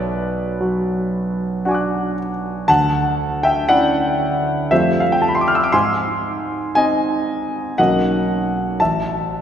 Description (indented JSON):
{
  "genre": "classical, impressionist solo piano",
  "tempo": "59 BPM",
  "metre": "3/4",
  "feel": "rubato",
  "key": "unclear",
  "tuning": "A4 = 440 Hz",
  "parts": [
    { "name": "warm concert grand piano", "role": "solo", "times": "0.0-9.4 s", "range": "A1 to F#6", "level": "-16 LUFS", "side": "equal", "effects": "none" }
  ],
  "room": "wet church reverb, RT60 3.0 s",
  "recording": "recorded in a church or concert hall",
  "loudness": "-16 LUFS",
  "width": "side -9 dB against mid",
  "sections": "0.0-9.4 A section",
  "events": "none",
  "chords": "0.0 Bm6; 2.7 Dmaj9; 4.7 Fadd9; 5.7 G#; 7.8 Bmaj9; 8.8 A5"
}